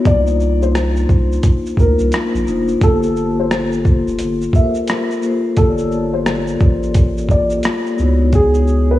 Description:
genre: lo-fi hip hop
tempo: 87 BPM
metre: 4/4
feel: swing 62% on 16ths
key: unclear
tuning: A4 = 440 Hz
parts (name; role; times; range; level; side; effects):
- vibraphone with soft mallets; accompaniment; 0.0-9.0 s; Bb3 to D5; -18 LUFS; left 3 dB; none
- felt-muted upright piano; melody; 0.1-9.0 s; G#4 to E5; -21 LUFS; equal; none
- soft dub sub bass; bass; 0.1-9.0 s; F1 to D2; -18 LUFS; equal; none
- boom bap sampler-style drum kit; drums; 0.1-8.9 s; hi-hat, kick drum, rim click, shaker; -16 LUFS; equal; vintage 12-bit sampler grit
room: light reverb, digital ambience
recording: small room ambience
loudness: -13 LUFS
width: side -15 dB against mid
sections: 0.0-9.0 A section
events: none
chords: 0.1 Cm11; 2.8 Gm11; 8.0 C#m11

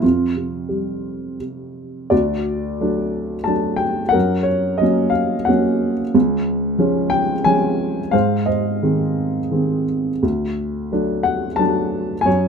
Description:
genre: classical, lyrical solo piano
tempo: 88 BPM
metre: 3/4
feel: uneven beats, rubato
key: unclear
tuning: A4 = 440 Hz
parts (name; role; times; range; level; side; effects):
- dark baby grand piano; solo; 0.0-12.5 s; Db2 to A5; -17 LUFS; equal; none
room: light reverb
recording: close, detailed microphones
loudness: -17 LUFS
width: side -6 dB against mid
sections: 0.0-2.1 A section; 2.1-12.5 B section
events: none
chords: 0.0 Fsus2; 2.1 D; 4.2 Gb; 6.1 Db; 8.1 Ab; 10.2 D

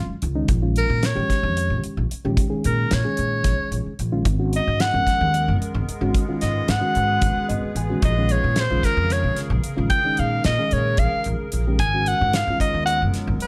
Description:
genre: electric jazz fusion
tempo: 223 BPM (eighths)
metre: 7/8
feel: straight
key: unclear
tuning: A4 = 437 Hz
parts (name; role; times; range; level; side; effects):
- bright soprano saxophone; melody; 0.0-13.5 s; E#4 to G#5; -25 LUFS; equal; slapback echo
- mellow reed electric piano; accompaniment; 0.0-13.4 s; D#3 to G#5; -30 LUFS; equal; none
- upright bass; bass; 0.0-13.4 s; G#1 to A#2; -26 LUFS; equal; none
- damped 70s drum kit; drums; 0.2-13.5 s; hi-hat, kick drum, snare drum; -26 LUFS; equal; none
- evolving wavetable pad; sustained chords; 4.9-13.5 s; C#3 to B4; -35 LUFS; equal; chorus, built-in reverb
room: light reverb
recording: none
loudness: -21 LUFS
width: mono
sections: 0.0-13.5 A section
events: soprano saxophone solo 0.0-13.5; reed electric piano fill 7.2-8.0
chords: 0.5 A#m7; 4.3 G#m9; 8.0 A#m7; 11.8 G#m9

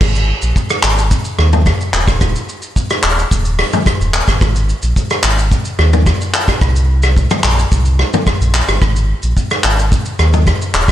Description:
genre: afrobeats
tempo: 109 BPM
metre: 4/4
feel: straight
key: Ab major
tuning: A4 = 440 Hz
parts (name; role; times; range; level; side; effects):
- sub bass with octave; bass; 0.0-10.9 s; Eb1 to Eb2; -14 LUFS; equal; none
- loose indie drum kit; drums; 0.0-10.9 s; crash cymbal, handclaps, hi-hat, kick drum, rim click, shaker, toms; -14 LUFS; equal; vintage 12-bit sampler grit
room: light reverb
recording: none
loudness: -11 LUFS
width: side -12 dB against mid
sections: 0.0-10.9 A section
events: none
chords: none

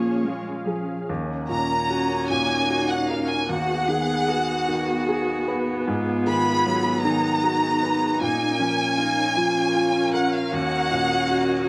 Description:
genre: neoclassical piano and strings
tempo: 51 BPM (dotted quarters)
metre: 6/8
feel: rubato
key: Eb minor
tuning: A4 = 439 Hz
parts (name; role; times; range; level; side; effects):
- muted chamber violin section; melody; 0.0-11.7 s; Db5 to Cb6; -26 LUFS; equal; none
- muted cello; second line; 0.0-11.7 s; F3 to G#4; -30 LUFS; equal; none
- clear baby grand piano; accompaniment; 0.0-11.7 s; Eb2 to F5; -29 LUFS; equal; none
- muted viola; accompaniment; 0.0-11.7 s; B3 to Db4; -32 LUFS; equal; none
- analog string pad; sustained chords; 0.0-11.7 s; B3 to Ab5; -35 LUFS; equal; ensemble chorus
room: light reverb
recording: close, detailed microphones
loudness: -23 LUFS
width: mono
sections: 0.0-1.1 A section; 1.1-11.7 B section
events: none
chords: 0.0 Bbm7; 1.1 Ebm7; 3.5 B6/D#; 5.9 Abm7; 8.2 Bbm7; 10.5 Ebm7

